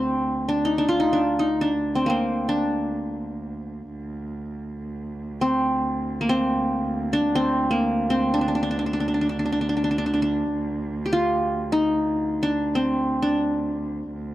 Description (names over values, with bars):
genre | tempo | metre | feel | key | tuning
Arabic maqam ensemble | free time | none | none | D maqam kurd | A4 = 440 Hz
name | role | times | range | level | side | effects
qanun | melody | 0.0-14.3 s | Bb3 to G4 | -22 LUFS | equal | none
muted cello | drone | 0.0-14.3 s | D2 | -30 LUFS | right 2 dB | none
room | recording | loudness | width
studio ambience | dry, close 1970s-style studio recording | -21 LUFS | side -14 dB against mid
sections
0.0-14.3 A section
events
none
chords
none